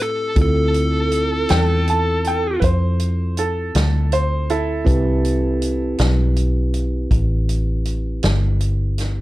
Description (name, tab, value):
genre	slow blues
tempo	53 BPM (dotted quarters)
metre	12/8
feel	straight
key	A minor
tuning	A4 = 440 Hz
part	dark smooth lead guitar	melody	0.0-2.6 s	A4	-21 LUFS	left 1 dB	overdrive
part	bell-like tine electric piano	accompaniment	0.0-9.2 s	C4 to B5	-25 LUFS	right 2 dB	plate reverb
part	vintage muted fingered electric bass	bass	0.0-9.2 s	G1 to A2	-19 LUFS	equal	none
part	vintage drum kit	drums	0.4-9.2 s	hi-hat, kick drum, snare drum	-22 LUFS	equal	none
part	bright upright piano	second line	1.5-6.0 s	E4 to A5	-24 LUFS	right 2 dB	plate reverb
room	light reverb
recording	dark, warm production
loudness	-16 LUFS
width	side -17 dB against mid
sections	0.0-9.2 A section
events	none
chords	0.4 Dm7; 4.9 Am7